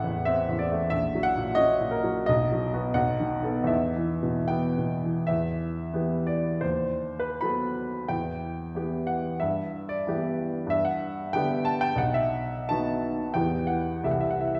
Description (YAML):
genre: classical, romantic character piece for solo piano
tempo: 72-95 BPM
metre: 2/4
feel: rubato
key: E minor, G major from 10.7 s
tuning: A4 = 440 Hz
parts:
  - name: clear grand piano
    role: solo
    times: 0.0-14.6 s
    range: A1 to B5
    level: -27 LUFS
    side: equal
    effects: none
room: wet recital hall reverb, RT60 1.4 s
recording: recorded in a church or concert hall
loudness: -27 LUFS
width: mono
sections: 0.0-5.3 A section; 5.3-14.6 B section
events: none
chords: 0.0 Amadd11; 0.9 F#/A#; 2.3 B; 3.0 B7; 3.7 Em; 6.6 B7/D#; 8.1 Em; 9.4 Em/G; 10.7 G; 12.0 B7; 13.3 Em; 14.0 Am7/C